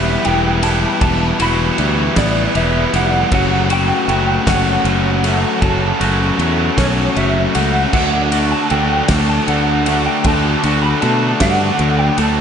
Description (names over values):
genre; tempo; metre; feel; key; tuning
post-rock; 52 BPM (dotted quarters); 6/8; straight; unclear; A4 = 440 Hz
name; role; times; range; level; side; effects
electric slide guitar; melody; 0.0-12.4 s; C#5 to B5; -21 LUFS; equal; ensemble chorus, ping-pong delay
twangy electric guitar; arpeggios; 0.0-12.4 s; D3 to F#4; -22 LUFS; left 2 dB; wide subtle chorus, ping-pong delay
overdriven electric guitar; riff; 0.0-12.4 s; D3 to F#4; -20 LUFS; right 11 dB; none
sludgy distorted guitar; riff; 0.0-12.4 s; D3 to F#4; -22 LUFS; left 10 dB; overdrive
fingered electric bass; bass; 0.0-12.4 s; E1 to B2; -18 LUFS; equal; none
loose indie drum kit; drums; 0.2-12.4 s; crash cymbal, kick drum, ride cymbal, snare drum; -20 LUFS; equal; none
evolving wavetable pad; sustained chords; 8.7-12.4 s; F#3 to A5; -30 LUFS; left 1 dB; none
room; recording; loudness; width
moderate plate reverb, RT60 2.4 s; dreamy mix soaked in reverb, nothing above 10.3 kHz; -13 LUFS; side -7 dB against mid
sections
0.0-12.4 A section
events
none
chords
0.0 Emadd9; 3.3 F#m; 7.9 D